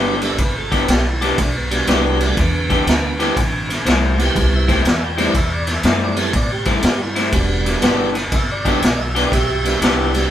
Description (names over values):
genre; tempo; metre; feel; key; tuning
electric blues shuffle; 121 BPM; 4/4; swing 66% on 8ths; E minor; A4 = 440 Hz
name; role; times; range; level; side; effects
tonewheel organ; accompaniment; 0.0-10.3 s; D3 to G5; -23 LUFS; right 3 dB; slow rotary speaker
electric guitar through a small old amp; riff; 0.0-10.2 s; A2 to G4; -21 LUFS; left 2 dB; none
upright bass; bass; 0.0-10.2 s; E1 to A2; -22 LUFS; equal; none
raw garage drum kit; drums; 0.2-10.2 s; kick drum, ride cymbal, snare drum; -18 LUFS; equal; none
room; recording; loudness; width
light reverb; band playing live in one room; -15 LUFS; side -11 dB against mid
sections
0.0-10.3 A section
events
none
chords
0.0 Em7; 3.4 Am7; 7.3 Em7